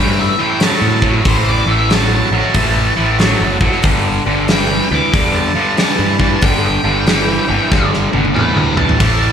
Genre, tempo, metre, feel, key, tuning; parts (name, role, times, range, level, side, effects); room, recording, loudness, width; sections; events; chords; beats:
blues rock power trio and southern rock; 93 BPM; 4/4; swing 64% on 8ths; A4 = 440 Hz
octave-fuzz lead guitar; melody; 0.0-9.3 s; C5 to D6; -20 LUFS; equal; distortion, slapback echo
overdriven tonewheel organ; sustained chords; 0.0-9.3 s; D4 to C5; -28 LUFS; right 3 dB
overdriven electric guitar; riff; 0.0-9.3 s; G2 to F#3; -16 LUFS; equal; slapback echo
growling picked electric bass; bass; 0.0-9.3 s; F#1 to A2; -18 LUFS; equal; overdrive
big rock drum kit; drums; 0.6-9.2 s; crash cymbal, hi-hat, kick drum, snare drum, toms; -17 LUFS; equal
light reverb; live gig heard through the venue's PA, club reverb; -11 LUFS; side -8 dB against mid
0.0-9.3 A section
lead electric guitar solo 0.0-9.3; drum fill 7.7-9.0
0.0 Am; 3.8 G
0.61 | 1.26 1.91 2.55 3.20 | 3.84 4.49 5.13 5.78 | 6.42 7.07 7.71 8.36 | 9.00